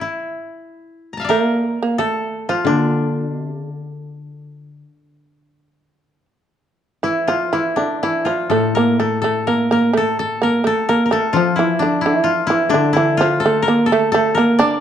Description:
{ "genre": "japanese traditional, Japanese chamber music", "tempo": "78-88 BPM", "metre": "4/4", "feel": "rubato", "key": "D hirajoshi", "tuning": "A4 = 441 Hz", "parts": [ { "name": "koto", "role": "melody", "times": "0.0-14.8 s", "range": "D4 to Bb5", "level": "-20 LUFS", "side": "left 3 dB", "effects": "none" }, { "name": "shamisen", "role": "second line", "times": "0.0-14.8 s", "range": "D3 to D4", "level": "-17 LUFS", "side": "right 3 dB", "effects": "none" }, { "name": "koto", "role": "accompaniment", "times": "2.6-14.8 s", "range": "A2 to F3", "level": "-22 LUFS", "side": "left 5 dB", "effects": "none" } ], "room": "wet recital hall reverb, RT60 1.4 s", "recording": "dark, warm production", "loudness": "-15 LUFS", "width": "side -9 dB against mid", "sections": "0.0-7.0 A section; 7.0-14.8 B section", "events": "none", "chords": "none", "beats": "0.59 | 1.28 1.98 2.67 3.38 | 4.09 4.81 5.54 6.29 | 7.04 7.78 8.51 9.23 | 9.94 10.65 11.34 12.02 | 12.72 13.42 14.12" }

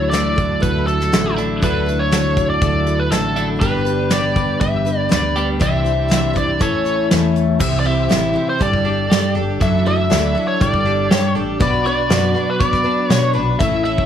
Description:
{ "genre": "folk rock and heartland rock", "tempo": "120 BPM", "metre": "4/4", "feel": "straight", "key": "D major", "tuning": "A4 = 440 Hz", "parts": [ { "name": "biting lead guitar", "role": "melody", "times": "0.0-14.1 s", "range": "A4 to E5", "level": "-20 LUFS", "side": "equal", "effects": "overdrive" }, { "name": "picked twelve-string acoustic guitar", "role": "accompaniment", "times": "0.0-14.1 s", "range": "A2 to C#5", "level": "-23 LUFS", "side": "left 6 dB", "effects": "none" }, { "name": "tonewheel organ", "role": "sustained chords", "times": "0.0-14.1 s", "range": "B3 to E5", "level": "-30 LUFS", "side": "right 2 dB", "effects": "slow rotary speaker, overdrive, chorus vibrato" }, { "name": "twelve-string electric guitar", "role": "riff", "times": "0.0-14.1 s", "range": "G2 to A4", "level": "-22 LUFS", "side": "right 3 dB", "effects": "spring reverb" }, { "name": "hollow-body short-scale fingered electric bass", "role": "bass", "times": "0.0-14.1 s", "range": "F#1 to B2", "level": "-22 LUFS", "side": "equal", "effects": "none" }, { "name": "soft brush drum kit", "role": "drums", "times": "0.1-14.1 s", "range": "crash cymbal, hi-hat, kick drum, snare drum", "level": "-20 LUFS", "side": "equal", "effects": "none" } ], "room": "light reverb", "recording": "studio reverb", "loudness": "-15 LUFS", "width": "side -9 dB against mid", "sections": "0.0-7.6 A section; 7.6-14.1 B section", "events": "none", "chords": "0.0 Dadd9; 3.6 G; 5.6 Cadd9; 6.6 A; 7.6 C; 8.6 Gsus2; 9.6 Dadd9/F#; 10.6 Gsus2; 11.6 Bm", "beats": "0.13 0.63 1.12 | 1.62 2.12 2.62 3.11 | 3.61 4.11 4.61 5.11 | 5.61 6.11 6.61 7.11 | 7.61 8.11 8.61 9.11 | 9.61 10.11 10.61 11.11 | 11.61 12.12 12.62 13.11 | 13.61" }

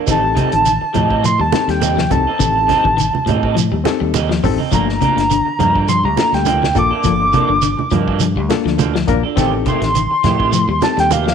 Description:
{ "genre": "afrobeat", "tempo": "103 BPM", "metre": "4/4", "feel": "swing 54% on 16ths", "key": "unclear", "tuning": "A4 = 440 Hz", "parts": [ { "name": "electric guitar through a small old amp", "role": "stabs", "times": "0.0-11.3 s", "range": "Eb3 to A4", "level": "-23 LUFS", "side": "right 12 dB", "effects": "lush chorus" }, { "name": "pure sine lead", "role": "melody", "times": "0.1-11.3 s", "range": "F5 to D6", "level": "-16 LUFS", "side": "right 1 dB", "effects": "chorus" }, { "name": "barky reed electric piano", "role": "accompaniment", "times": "0.1-11.1 s", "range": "A3 to Bb4", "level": "-21 LUFS", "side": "left 13 dB", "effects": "overdrive, fast tremolo" }, { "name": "semi-hollow electric guitar", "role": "arpeggios", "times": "0.1-11.3 s", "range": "C3 to G3", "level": "-22 LUFS", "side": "left 9 dB", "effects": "none" }, { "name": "fingered electric bass", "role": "bass", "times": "0.1-11.3 s", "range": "G1 to A2", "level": "-20 LUFS", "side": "equal", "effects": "none" }, { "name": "warm soul drum kit", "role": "drums", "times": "0.1-11.3 s", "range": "hi-hat, kick drum, snare drum", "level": "-24 LUFS", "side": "left 2 dB", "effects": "none" }, { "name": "shekere", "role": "percussion", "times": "0.1-11.3 s", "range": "none", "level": "-23 LUFS", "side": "right 8 dB", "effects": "none" }, { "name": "congas", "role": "percussion", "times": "0.4-11.3 s", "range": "none", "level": "-22 LUFS", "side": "right 8 dB", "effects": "none" } ], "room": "light reverb, small room ambience", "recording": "1960s-style stereo with parts hard left and right", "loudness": "-13 LUFS", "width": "side -7 dB against mid", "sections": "0.0-11.3 A section", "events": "soft synth lead solo 0.0-11.3", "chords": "0.1 Am7b5; 4.7 Gm9; 9.4 Am7b5", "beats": "| 0.08 0.66 1.24 1.82 | 2.40 2.98 3.57 4.15 | 4.73 5.31 5.89 6.47 | 7.05 7.63 8.21 8.79 | 9.37 9.95 10.53 11.11" }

